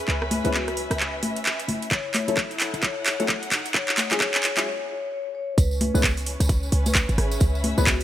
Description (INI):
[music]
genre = UK garage, two-step garage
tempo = 131 BPM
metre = 4/4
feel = swing 60% on 16ths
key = C# minor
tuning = A4 = 440 Hz
[part]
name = vibraphone with medium mallets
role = melody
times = 0.0-8.0 s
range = F#4 to C#5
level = -32 LUFS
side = left 2 dB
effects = digital delay
[part]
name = warm studio string section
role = texture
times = 0.0-8.0 s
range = C#4 to F#5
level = -33 LUFS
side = left 1 dB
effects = sidechain pumping
[part]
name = short 808-style bass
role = bass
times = 0.1-8.0 s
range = E1 to C#2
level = -24 LUFS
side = equal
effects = tube saturation
[part]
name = garage drum kit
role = drums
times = 0.1-8.0 s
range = congas, handclaps, hi-hat, rim click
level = -24 LUFS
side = equal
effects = overdrive
[part]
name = warm baby grand piano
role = stabs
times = 0.4-7.9 s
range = F#3 to B4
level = -30 LUFS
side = left 3 dB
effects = lush chorus, digital delay
[part]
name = electronic kick drum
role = drums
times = 1.9-8.0 s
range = none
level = -23 LUFS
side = equal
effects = none
[part]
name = tambourine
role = percussion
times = 5.6-8.0 s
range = none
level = -36 LUFS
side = right 3 dB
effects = none
[sound]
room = light reverb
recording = bright 1980s-style digital production, high-pass filter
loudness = -21 LUFS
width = side -12 dB against mid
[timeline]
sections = 0.0-5.6 A section; 5.6-8.0 B section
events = build-up 0.0-5.6; drum fill 0.0-4.7; filter sweep 0.0-5.6; break 4.7-5.6; drop 5.6-8.0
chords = 0.0 C#m7; 1.7 F#m7; 3.5 Emaj9; 5.6 C#m7